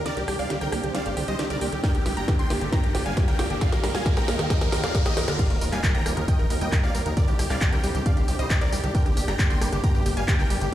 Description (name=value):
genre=uplifting trance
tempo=135 BPM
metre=4/4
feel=straight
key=Eb major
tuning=A4 = 440 Hz
part: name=supersaw chords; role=melody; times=0.0-10.7 s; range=G4 to C6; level=-31 LUFS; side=right 1 dB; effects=sidechain pumping, tape echo
part: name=analog pluck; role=second line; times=0.0-10.7 s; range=G4 to C6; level=-36 LUFS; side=left 1 dB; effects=chorus, sidechain pumping, tape echo
part: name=analog string pad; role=sustained chords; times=0.0-10.7 s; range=Eb3 to Bb4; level=-35 LUFS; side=equal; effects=ensemble chorus, sidechain pumping
part: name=gritty driven synth bass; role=bass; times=0.0-10.7 s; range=Eb1 to G2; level=-29 LUFS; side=equal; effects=sidechain pumping
part: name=riser and impact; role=sound effects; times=1.1-7.2 s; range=none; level=-37 LUFS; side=equal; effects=none
part: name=liquid acid bass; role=arpeggios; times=0.1-10.7 s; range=D2 to Eb4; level=-33 LUFS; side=right 3 dB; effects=analog chorus, sidechain pumping, tape echo
part: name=house drum kit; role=drums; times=0.1-10.7 s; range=crash cymbal, handclaps, hi-hat, rim click, snare drum, tambourine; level=-30 LUFS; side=equal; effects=none
part: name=electronic kick drum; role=drums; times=1.8-10.4 s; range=none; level=-22 LUFS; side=equal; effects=none
room=light reverb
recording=played on a big sound system in a bare room, large studio reverb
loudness=-21 LUFS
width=side -12 dB against mid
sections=0.0-5.4 A section; 5.4-10.7 B section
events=build-up 0.0-5.4; drum fill 0.0-5.4; filter sweep on acid bass 0.0-5.4; riser 1.1-5.4; drop 5.4-10.7; impact 5.4-7.2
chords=0.1 Csus2; 1.8 Gm; 3.6 Ebadd9; 7.2 Csus2; 8.9 Gm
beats=| 0.06 0.50 0.95 1.39 | 1.84 2.28 2.73 3.17 | 3.61 4.06 4.50 4.95 | 5.39 5.84 6.28 6.72 | 7.17 7.61 8.06 8.50 | 8.95 9.39 9.84 10.28 | 10.72